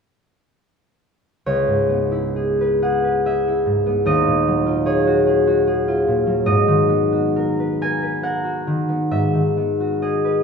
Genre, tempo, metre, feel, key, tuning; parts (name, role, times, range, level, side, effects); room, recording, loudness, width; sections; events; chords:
classical, solo harp piece; 61-76 BPM; 3/4; rubato; C# dorian; A4 = 436 Hz
concert harp; solo; 1.5-10.4 s; C#2 to G#5; -16 LUFS; equal
wet recital hall reverb, RT60 1.3 s; minimal, uncompressed stereo recording; -16 LUFS; side -6 dB against mid
1.5-10.4 A section
1.5 C#m7; 4.1 D#m11; 6.5 G#m9; 9.1 G#m7